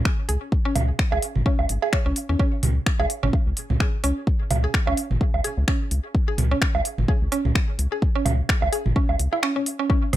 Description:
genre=minimal techno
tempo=128 BPM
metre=4/4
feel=swing 56% on 16ths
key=C# minor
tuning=A4 = 442 Hz
part: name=electronic kick drum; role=drums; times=0.1-10.0 s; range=none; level=-22 LUFS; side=equal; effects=overdrive
part: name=minimal click drum kit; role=drums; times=0.1-10.2 s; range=finger snaps, hi-hat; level=-27 LUFS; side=left 1 dB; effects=overdrive
part: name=mallet-like synth pluck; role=riff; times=0.3-10.0 s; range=C#4 to C#5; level=-28 LUFS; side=right 1 dB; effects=chorus, sidechain pumping, dub echo
part: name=rubbery square bass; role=bass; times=0.3-10.2 s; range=G#1 to E2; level=-22 LUFS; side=equal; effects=sidechain pumping
part: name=booming analog drum machine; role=percussion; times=0.8-10.2 s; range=rim click, toms, woodblock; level=-26 LUFS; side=right 4 dB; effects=tape echo
room=light reverb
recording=none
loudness=-20 LUFS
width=side -13 dB against mid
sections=0.0-10.2 A section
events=break 9.4-9.9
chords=none

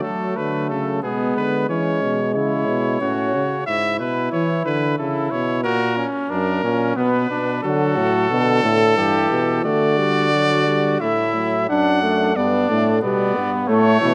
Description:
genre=classical, imitative canzona for brass ensemble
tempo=90 BPM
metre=3/4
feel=straight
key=D major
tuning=A4 = 444 Hz
part: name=clear trumpet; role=melody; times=0.0-14.1 s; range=G#4 to F#5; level=-25 LUFS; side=equal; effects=none
part: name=mellow trumpet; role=second line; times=0.0-14.1 s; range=A3 to G4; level=-26 LUFS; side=equal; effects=none
part: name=warm trombone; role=accompaniment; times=0.0-3.6, 7.6-14.1 s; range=D3 to D4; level=-24 LUFS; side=equal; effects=none
part: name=warm euphonium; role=bass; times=0.0-14.1 s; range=F#2 to F#3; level=-25 LUFS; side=equal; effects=none
room=moderate concert hall reverb, RT60 2.2 s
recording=close, detailed microphones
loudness=-19 LUFS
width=mono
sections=0.0-11.7 A section; 11.7-14.1 B section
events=none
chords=0.0 D; 1.0 G#dim/B; 1.7 C#m; 3.0 F#m/A; 3.7 E/G#; 5.0 A/C#; 5.6 F#/A#; 7.0 Bm; 7.6 D; 9.0 Em/G; 9.6 Asus4/D; 11.0 A5; 11.7 D/F#; 13.0 G/B

